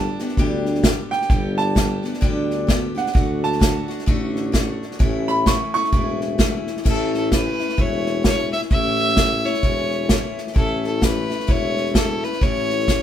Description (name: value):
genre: honky-tonk and classic country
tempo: 130 BPM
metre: 4/4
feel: swing 60% on 8ths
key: A mixolydian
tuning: A4 = 440 Hz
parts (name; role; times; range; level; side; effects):
- bright upright piano; second line; 0.0-6.2 s; F#5 to C#6; -23 LUFS; right 4 dB; none
- picked steel-string acoustic guitar; accompaniment; 0.0-13.0 s; G2 to G4; -26 LUFS; left 4 dB; none
- mellow tuba; bass; 0.0-13.0 s; E1 to D2; -25 LUFS; equal; none
- unplugged drum kit; drums; 0.2-13.0 s; crash cymbal, hi-hat, kick drum, snare drum; -20 LUFS; equal; none
- clear fiddle; melody; 6.9-13.0 s; A4 to E5; -23 LUFS; equal; none
room: light reverb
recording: minimal, uncompressed stereo recording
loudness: -18 LUFS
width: side -10 dB against mid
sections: 0.0-6.9 A section; 6.9-13.0 B section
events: upright piano solo 0.0-6.9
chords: 0.0 G; 3.2 D; 5.0 A